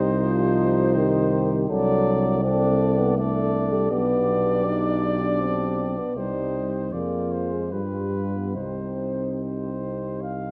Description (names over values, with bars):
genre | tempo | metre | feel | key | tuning
classical, hymn-like piece for brass band | 71-83 BPM | 3/4 | rubato | C minor | A4 = 440 Hz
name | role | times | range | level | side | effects
mellow cornet | melody | 0.0-10.5 s | B4 to F5 | -33 LUFS | equal | none
mellow French horn section | second line | 0.0-10.5 s | G4 to A4 | -33 LUFS | equal | none
clear trombone section | accompaniment | 0.0-10.5 s | D4 to F4 | -35 LUFS | equal | none
mellow tuba | bass | 0.0-10.5 s | B1 to G2 | -28 LUFS | equal | none
warm euphonium | accompaniment | 0.2-10.2 s | Eb3 to Eb4 | -28 LUFS | equal | none
room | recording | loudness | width
moderate concert hall reverb, RT60 2.0 s | none | -24 LUFS | mono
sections
0.0-10.5 A section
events
none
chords
0.0 Cm; 1.7 D7/C; 3.9 G/B; 6.2 Cm; 6.9 Ddim/F; 7.7 G7; 8.6 Cm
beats
0.22 0.95 | 1.69 2.43 3.17 | 3.91 4.65 5.40 | 6.16 6.93 7.72 | 8.55 9.39 10.22